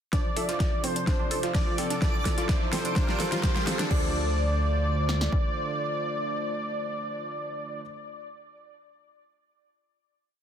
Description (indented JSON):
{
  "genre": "progressive house",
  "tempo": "127 BPM",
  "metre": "4/4",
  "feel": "straight",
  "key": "D minor",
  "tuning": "A4 = 440 Hz",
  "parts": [
    { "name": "wide unison lead", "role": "melody", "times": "0.1-7.8 s", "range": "C5 to D5", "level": "-32 LUFS", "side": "equal", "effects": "ping-pong delay" },
    { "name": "warm analog pad", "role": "sustained chords", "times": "0.1-7.8 s", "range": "C3 to C5", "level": "-37 LUFS", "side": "right 1 dB", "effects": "chorus, sidechain pumping" },
    { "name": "analog pluck", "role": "arpeggios", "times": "0.1-4.1 s", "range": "C4 to A4", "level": "-34 LUFS", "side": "equal", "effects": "chorus, sidechain pumping, ping-pong delay" },
    { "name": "warm concert grand piano", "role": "stabs", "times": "0.1-7.8 s", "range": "F3 to E5", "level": "-36 LUFS", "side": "right 1 dB", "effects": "sidechain pumping, low-pass filter, ping-pong delay" },
    { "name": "big-room dance drum kit", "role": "drums", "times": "0.1-4.0 s", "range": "crash cymbal, hi-hat, snare drum", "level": "-33 LUFS", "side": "equal", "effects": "overdrive, small room reverb" },
    { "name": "deep house drum kit", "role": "drums", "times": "0.1-5.4 s", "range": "kick drum, snare drum", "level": "-27 LUFS", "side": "equal", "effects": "small room reverb" },
    { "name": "dusty soul sampler-style drum kit", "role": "drums", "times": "0.1-3.9 s", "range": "hi-hat, snare drum", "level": "-42 LUFS", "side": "equal", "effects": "high-pass filter on hats, small room reverb, high-pass filter on snare, high-pass filter on room" },
    { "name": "riser", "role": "sound effects", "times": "1.3-3.9 s", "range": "none", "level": "-40 LUFS", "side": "left 1 dB", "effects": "none" },
    { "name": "backwards swelling texture", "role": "texture", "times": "1.4-3.9 s", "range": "D6", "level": "-43 LUFS", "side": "right 6 dB", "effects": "none" },
    { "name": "fat analog bass", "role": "bass", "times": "0.4-5.3 s", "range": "C2 to D2", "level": "-28 LUFS", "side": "equal", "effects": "sidechain pumping, high-pass filter" }
  ],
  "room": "light reverb",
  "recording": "dense, heavily limited modern master",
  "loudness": "-25 LUFS",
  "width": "side -9 dB against mid",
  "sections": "0.1-3.9 build; 3.9-7.7 final chord",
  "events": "build-up 0.1-3.9; drum fill 0.1-3.9; filter sweep on synth pluck 0.1-3.9",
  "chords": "0.1 Dm7; 2.0 Fmaj7; 3.0 Gm7; 3.9 Dm7"
}